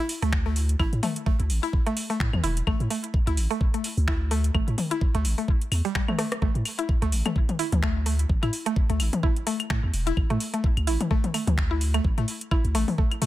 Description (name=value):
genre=minimal techno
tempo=128 BPM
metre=4/4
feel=swing 56% on 16ths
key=unclear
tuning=A4 = 439 Hz
part: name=garage drum kit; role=drums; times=0.1-13.3 s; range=finger snaps, hi-hat, rim click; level=-32 LUFS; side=right 1 dB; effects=none
part: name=mallet-like synth pluck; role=riff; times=0.2-13.2 s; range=G3 to E4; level=-30 LUFS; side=equal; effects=chorus, sidechain pumping, dub echo
part: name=punchy sub bass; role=bass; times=0.2-13.3 s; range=E1 to A2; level=-24 LUFS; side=equal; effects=sidechain pumping
part: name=electronic kick drum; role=drums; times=0.3-13.1 s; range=none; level=-24 LUFS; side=equal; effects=none
part: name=electronic claves and toms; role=percussion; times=0.8-13.2 s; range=none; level=-30 LUFS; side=left 3 dB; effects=none
room=little or no reverb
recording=none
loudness=-22 LUFS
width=side -15 dB against mid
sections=0.0-6.4 A section; 6.4-13.3 A section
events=drop 0.0-6.4, 6.4-13.3; drum fill 6.2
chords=0.0 Asus4